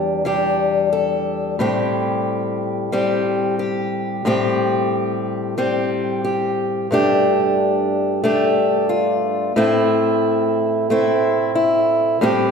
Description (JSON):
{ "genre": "folk", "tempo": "90 BPM", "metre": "4/4", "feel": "straight", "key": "A minor", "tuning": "A4 = 439 Hz", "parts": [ { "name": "fingerpicked acoustic archtop guitar", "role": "solo", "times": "0.0-12.5 s", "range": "E2 to A4", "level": "-16 LUFS", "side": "equal", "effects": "none" } ], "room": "wet scoring stage reverb, RT60 1.7 s", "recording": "recorded in a church or concert hall", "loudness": "-16 LUFS", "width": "side -6 dB against mid", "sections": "0.0-12.2 A section", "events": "none", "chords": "0.0 Em7; 1.6 Am7; 6.9 Gsus2; 9.6 Am" }